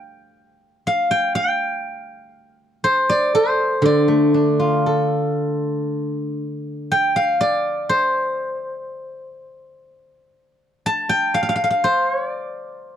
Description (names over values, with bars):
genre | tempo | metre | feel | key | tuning
chinese traditional, Chinese solo plucked strings | 60 BPM | 2/4 | uneven beats, rubato | D yu mode | A4 = 442 Hz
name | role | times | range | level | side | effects
steel-string zither | solo | 0.0-13.0 s | D3 to A5 | -18 LUFS | equal | none
room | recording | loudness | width
light reverb | dry, close 1970s-style studio recording | -17 LUFS | side -9 dB against mid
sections
0.0-5.9 A section; 5.9-13.0 B section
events
none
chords
none